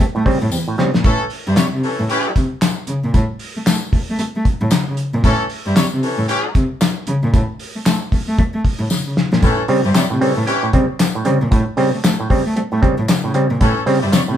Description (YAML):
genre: funk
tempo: 114 BPM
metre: 4/4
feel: swing 60% on 16ths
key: A mixolydian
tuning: A4 = 441 Hz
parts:
  - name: auto-wah clav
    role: stabs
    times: 0.0-0.9, 9.4-14.4 s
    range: A2 to B#3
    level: -18 LUFS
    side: right 2 dB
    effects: none
  - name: dark cello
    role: bass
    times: 0.0-14.4 s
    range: E2 to A3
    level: -19 LUFS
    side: equal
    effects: none
  - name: cloth-damped thuddy drum kit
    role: drums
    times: 0.0-14.3 s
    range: handclaps, hi-hat, kick drum, snare drum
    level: -17 LUFS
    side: left 1 dB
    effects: none
  - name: tambourine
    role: percussion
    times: 0.5-14.3 s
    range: none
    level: -28 LUFS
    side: left 5 dB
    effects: none
  - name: warm horn section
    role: second line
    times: 1.0-14.2 s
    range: E3 to C#5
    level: -20 LUFS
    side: left 1 dB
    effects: none
room: light reverb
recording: band playing live in one room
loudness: -15 LUFS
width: side -10 dB against mid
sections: 0.0-1.0 A section; 1.0-14.4 B section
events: drum fill 0.5-1.0, 8.9-9.4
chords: 0.0 A7#9